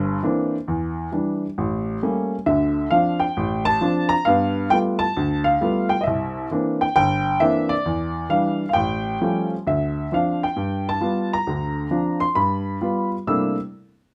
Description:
solo jazz; 134 BPM; 4/4; swing 68% on 8ths; C mixolydian; A4 = 438 Hz
warm upright piano; solo; 0.0-13.6 s; G1 to E6; -22 LUFS; equal
light reverb; -22 LUFS; mono
0.0-9.7 A section; 9.7-13.3 B section
0.0 C9; 0.7 Em7; 1.6 A7b9; 2.5 Dm7; 4.3 G9; 6.1 C9; 7.9 Em7; 8.8 Aaug7; 9.7 Dm7; 10.6 G7; 11.5 Dm7; 12.4 G7; 13.3 C13

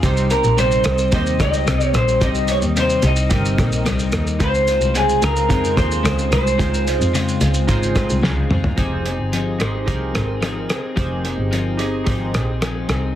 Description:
indie pop, bedroom pop; 110 BPM; 4/4; straight; F minor; A4 = 440 Hz
chorused retro synth keys; accompaniment; 0.0-13.2 s; C4 to Eb5; -27 LUFS; right 5 dB; cassette tape
twelve-string electric guitar; accompaniment; 0.0-13.2 s; C3 to Ab4; -24 LUFS; left 5 dB; lush chorus, warbly pitch drift
dark double bass; bass; 0.0-13.1 s; F1 to F2; -20 LUFS; equal
cloth-damped thuddy drum kit; drums; 0.0-13.0 s; hi-hat, kick drum, rim click, shaker, snare drum, toms; -22 LUFS; equal; soft clipping on kick, soft clipping on snare
electric guitar through a small old amp; melody; 0.3-8.2 s; Ab4 to Eb5; -20 LUFS; equal; lush chorus, tape echo
moderate spring reverb, RT60 1.6 s; dense, heavily limited modern master; -16 LUFS; side -11 dB against mid
0.0-8.8 A section; 8.8-13.2 B section
drum fill 8.2-8.8
0.0 Cm; 4.4 Dbmaj7; 8.8 Fm7

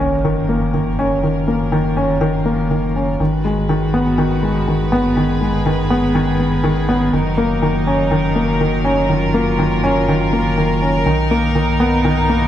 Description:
piano and strings electronica; 122 BPM; 4/4; straight; F# major; A4 = 440 Hz
rich chamber string section; sustained chords; 0.0-12.5 s; F#3 to B4; -23 LUFS; equal
warm upright piano; riff; 0.0-12.5 s; D#3 to C#4; -15 LUFS; left 1 dB; digital delay
round analog bass; bass; 0.0-12.5 s; F#1 to B1; -23 LUFS; right 1 dB
sub drop; sound effects; 0.0-1.2 s; -29 LUFS; right 3 dB
wet recital hall reverb, RT60 1.4 s; -14 LUFS; side -11 dB against mid
0.0-12.5 A section
fade-in on string section 0.0-12.5; impact 0.0-1.2
0.0 F#6; 3.2 G#m7; 7.1 F#6; 11.1 Bmaj7

